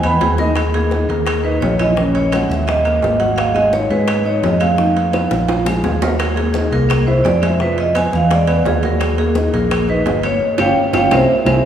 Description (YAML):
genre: Afro-Cuban jazz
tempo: 171 BPM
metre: 4/4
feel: straight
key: Eb minor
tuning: A4 = 441 Hz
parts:
  - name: vibraphone with medium hard mallets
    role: melody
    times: 0.0-11.6 s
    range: Ab4 to B5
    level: -17 LUFS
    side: right 1 dB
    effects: none
  - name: warm upright piano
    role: accompaniment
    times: 0.0-11.6 s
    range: Db3 to Eb6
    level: -21 LUFS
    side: right 1 dB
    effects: none
  - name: fingered electric bass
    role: bass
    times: 0.0-11.6 s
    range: G1 to Ab2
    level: -18 LUFS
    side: equal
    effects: none
  - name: claves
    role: percussion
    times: 0.0-11.5 s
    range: none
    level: -30 LUFS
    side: left 1 dB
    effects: none
  - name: congas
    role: percussion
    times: 0.0-11.5 s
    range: none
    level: -26 LUFS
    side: left 1 dB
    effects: none
  - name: timbales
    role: percussion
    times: 0.0-11.5 s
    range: none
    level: -25 LUFS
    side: right 4 dB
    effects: none
  - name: bongos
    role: percussion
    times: 0.2-11.5 s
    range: none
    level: -27 LUFS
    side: left 4 dB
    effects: none
room: wet church reverb, RT60 2.9 s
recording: recorded in a church or concert hall, small room ambience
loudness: -13 LUFS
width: side -9 dB against mid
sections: 0.6-11.7 A section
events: drum fill 0.0-0.6, 5.1-6.2, 10.9-11.7; band accent 10.4-11.7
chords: 0.0 E5; 0.6 Eb5; 2.0 Bbm7b5; 2.7 Eb; 3.4 Abm7; 4.8 Bmaj7#11; 5.5 Bb5; 6.2 Ebm; 6.9 C7; 7.6 Abm6; 8.3 E7; 9.0 Ebm; 10.4 Fsus2/G; 11.1 Caug7